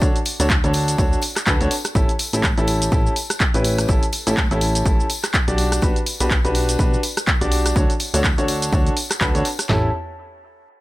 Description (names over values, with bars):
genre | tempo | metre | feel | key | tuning
piano house | 124 BPM | 4/4 | swing 58% on 16ths | A mixolydian | A4 = 440 Hz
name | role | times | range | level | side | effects
bright upright piano | riff | 0.0-9.9 s | C#4 to D5 | -23 LUFS | equal | sidechain pumping, dub echo
plucky analog bass | bass | 0.0-9.9 s | A1 to D2 | -22 LUFS | equal | sidechain pumping
punchy analog drum machine | drums | 0.0-9.8 s | handclaps, kick drum, snare drum, toms | -20 LUFS | equal | none
punchy analog drum machine | drums | 0.0-9.7 s | handclaps, hi-hat, rim click, shaker | -23 LUFS | right 1 dB | none
tambourine | percussion | 0.0-9.7 s | none | -33 LUFS | left 5 dB | none
room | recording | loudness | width
little or no reverb | none | -17 LUFS | side -18 dB against mid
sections
0.0-9.7 A section; 9.7-10.8 B section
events
drop 0.0-9.7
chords
0.0 Dmaj7; 2.0 A7; 5.6 Gmaj7/B; 7.8 Dmaj7; 9.7 A7